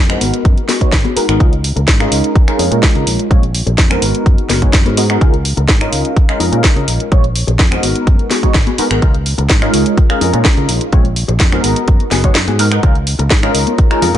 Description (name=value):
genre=filtered disco house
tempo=126 BPM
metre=4/4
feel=straight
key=Db mixolydian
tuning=A4 = 440 Hz
part: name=fingered electric bass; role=bass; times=0.0-14.2 s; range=Gb1 to Db3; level=-17 LUFS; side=equal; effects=sidechain pumping, low-pass filter
part: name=funky polysynth comp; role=accompaniment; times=0.1-14.2 s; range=Ab3 to Db5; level=-18 LUFS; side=right 1 dB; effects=chorus, phaser, sidechain pumping, low-pass filter
part: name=mellow electric guitar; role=riff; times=0.1-14.2 s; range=Cb4 to Db5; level=-21 LUFS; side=left 6 dB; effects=sidechain pumping, low-pass filter
part: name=house drum kit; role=drums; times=0.1-14.2 s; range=finger snaps, hi-hat, snare drum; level=-17 LUFS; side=equal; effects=sidechain pumping on hats, sidechain pumping on cymbals
part: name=electronic kick drum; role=drums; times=0.5-13.9 s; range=none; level=-11 LUFS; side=equal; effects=none
part: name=tambourine and congas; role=percussion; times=12.8-14.2 s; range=none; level=-22 LUFS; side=left 3 dB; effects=sidechain pumping on perc, low-pass filter on perc
room=digital ambience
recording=nothing above 11.0 kHz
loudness=-10 LUFS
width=side -11 dB against mid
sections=0.0-14.2 A section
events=filter sweep 0.0-14.2; kick drops out 12.4-12.8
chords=0.2 Abm9; 1.4 Db69; 3.3 Bbm9; 4.0 Abm9; 5.2 Db69; 7.1 Bbm9; 7.8 Abm9; 9.0 Db69; 10.9 Bbm9; 11.6 Abm9; 12.8 Db69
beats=0.45 0.93 | 1.40 1.88 2.36 2.83 | 3.31 3.78 4.26 4.74 | 5.21 5.69 6.17 6.64 | 7.12 7.59 8.07 8.55 | 9.02 9.50 9.97 10.45 | 10.93 11.40 11.88 12.36 | 12.83 13.31 13.78